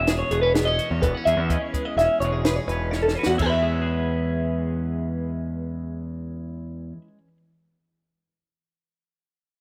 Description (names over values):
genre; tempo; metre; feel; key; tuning
math rock and midwest emo; 127 BPM; 5/4; straight; E major; A4 = 439 Hz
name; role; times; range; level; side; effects
twelve-string electric guitar; accompaniment; 0.0-7.4 s; E2 to G#4; -34 LUFS; equal; none
twelve-string electric guitar; arpeggios; 0.0-7.0 s; E4 to F#5; -26 LUFS; equal; phaser, slapback echo
growling picked electric bass; bass; 0.0-6.9 s; E1 to E2; -28 LUFS; equal; overdrive
compact cocktail drum kit; drums; 0.1-3.5 s; crash cymbal, hi-hat, kick drum, snare drum; -29 LUFS; equal; none
room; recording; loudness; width
light reverb, studio reverb; rough home demo mix; -24 LUFS; mono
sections
0.0-3.4 A section; 3.4-5.8 B section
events
drum fill 2.9-3.4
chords
0.0 E6